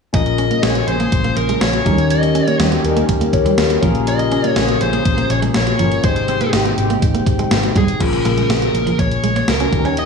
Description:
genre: 1980s-style pop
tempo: 122 BPM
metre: 4/4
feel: straight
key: Bb dorian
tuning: A4 = 438 Hz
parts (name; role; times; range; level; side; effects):
- dark smooth lead guitar; melody; 0.1-10.1 s; Ab4 to Eb5; -21 LUFS; right 1 dB; overdrive, tape echo
- barky tine electric piano; accompaniment; 0.1-10.1 s; Ab2 to Db5; -20 LUFS; left 6 dB; phaser
- chorused pulse-width pad; sustained chords; 0.1-10.1 s; C3 to G5; -24 LUFS; right 2 dB; wide subtle chorus
- vintage muted picked electric bass; bass; 0.1-10.1 s; G1 to Eb2; -22 LUFS; left 1 dB; none
- gated 80s digital drum machine; drums; 0.1-10.1 s; crash cymbal, hi-hat, kick drum, snare drum; -19 LUFS; equal; gated reverb, gated reverb snare
- clean electric guitar; riff; 0.3-9.9 s; F3 to Db4; -23 LUFS; right 6 dB; lush chorus
- mellow synth brass; stabs; 0.6-7.0 s; Eb3 to Bb4; -25 LUFS; equal; chorus
room: light reverb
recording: studio reverb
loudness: -14 LUFS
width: side -5 dB against mid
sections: 0.1-8.0 A section; 8.0-10.1 B section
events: none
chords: 0.1 Bbm7; 1.9 Eb7; 3.8 Bbm7; 6.0 Abmaj7; 8.0 Bbm7

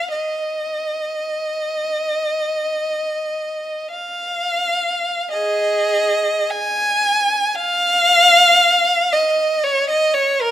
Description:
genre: classical, free, expressive piece for unaccompanied violin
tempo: 38-62 BPM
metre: 4/4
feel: rubato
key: unclear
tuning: A4 = 440 Hz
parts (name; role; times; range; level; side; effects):
- rich violin; solo; 0.0-10.5 s; Ab4 to Ab5; -15 LUFS; equal; none
room: light reverb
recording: close, detailed microphones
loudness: -15 LUFS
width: side -11 dB against mid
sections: 0.0-5.3 A section; 5.3-10.5 B section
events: none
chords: none

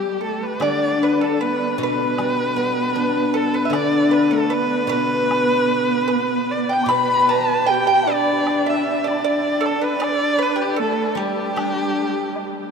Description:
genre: chinese traditional, Chinese chamber ensemble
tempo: 77 BPM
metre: 2/4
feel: rubato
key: G gong mode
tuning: A4 = 440 Hz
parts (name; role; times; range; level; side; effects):
- clear erhu; melody; 0.0-12.7 s; G4 to B5; -23 LUFS; right 1 dB; none
- bright xiao; second line; 0.0-12.7 s; G4 to D6; -24 LUFS; left 3 dB; none
- dark horsehead fiddle; second line; 0.0-12.7 s; G3 to B4; -23 LUFS; right 2 dB; none
- pipa; second line; 0.0-12.7 s; G4 to B5; -26 LUFS; right 4 dB; none
- steel-string zither; accompaniment; 0.6-12.7 s; B2 to D4; -24 LUFS; left 4 dB; none
- woodblock; percussion; 0.6-12.5 s; none; -37 LUFS; left 1 dB; none
room: wet cathedral reverb, RT60 6.3 s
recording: in a vast, echoing space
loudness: -17 LUFS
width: side -6 dB against mid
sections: 0.6-12.7 A section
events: none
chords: none

